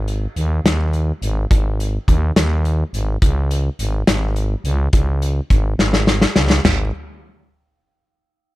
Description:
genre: indie folk with a building arrangement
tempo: 70 BPM (dotted quarters)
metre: 6/8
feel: straight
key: unclear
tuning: A4 = 440 Hz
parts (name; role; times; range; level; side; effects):
- growling FM bass; bass; 0.0-6.9 s; Ab1 to Eb2; -18 LUFS; equal; none
- loose indie drum kit; drums; 0.1-6.8 s; crash cymbal, hi-hat, kick drum, snare drum, toms; -16 LUFS; equal; none
room: little or no reverb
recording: none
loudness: -15 LUFS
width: side -17 dB against mid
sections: 0.0-6.6 A section; 6.6-8.4 B section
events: drum fill 5.8-6.6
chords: none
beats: 0.65 | 1.51 2.36 | 3.22 4.08 | 4.93 5.79 | 6.65

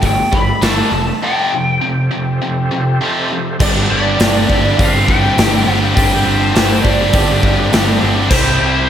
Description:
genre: classic rock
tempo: 101 BPM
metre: 4/4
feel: straight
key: unclear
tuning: A4 = 440 Hz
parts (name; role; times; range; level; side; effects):
- lead guitar through a small cranked amp; melody; 0.0-8.9 s; C5 to B5; -19 LUFS; equal; wah, overdrive, slapback echo
- bright tonewheel organ; sustained chords; 0.0-8.9 s; C4 to D5; -27 LUFS; equal; none
- tight distorted guitar; riff; 0.0-8.9 s; F2 to G4; -17 LUFS; equal; distortion
- fuzz picked electric bass; bass; 0.0-8.9 s; F1 to C2; -18 LUFS; equal; overdrive
- big rock drum kit; drums; 0.0-8.4 s; crash cymbal, hi-hat, kick drum, snare drum; -16 LUFS; equal; none
- thick fuzz guitar; riff; 3.6-8.9 s; G2 to E4; -20 LUFS; equal; distortion
room: moderate lush hall reverb, RT60 2.2 s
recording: big arena sound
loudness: -11 LUFS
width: side -9 dB against mid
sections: 0.0-3.6 A section; 3.6-8.9 B section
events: break 1.2-3.6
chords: 0.0 Gsus2; 1.2 Fadd9; 3.6 Gsus4; 8.3 C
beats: 0.04 0.63 | 1.23 1.82 2.42 3.01 | 3.60 4.19 4.79 5.38 | 5.97 6.56 7.14 7.73 | 8.32

